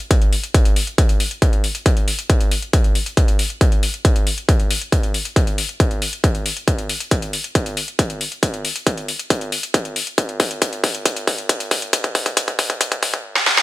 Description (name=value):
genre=uplifting trance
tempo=137 BPM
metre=4/4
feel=straight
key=none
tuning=none
part: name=techno drum kit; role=drums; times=0.0-13.6 s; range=hi-hat, snare drum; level=-21 LUFS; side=left 2 dB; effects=sidechain pumping on hats, high-pass filter on hats, studio reverb, high-pass filter on snare
part: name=electronic kick drum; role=drums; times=0.1-13.2 s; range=none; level=-17 LUFS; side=equal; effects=distortion, studio reverb
room=little or no reverb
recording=high-pass filter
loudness=-17 LUFS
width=side -17 dB against mid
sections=0.0-13.6 A section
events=build-up 0.0-13.6; filter sweep 0.0-13.6; drum fill 6.7-13.2, 13.4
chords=none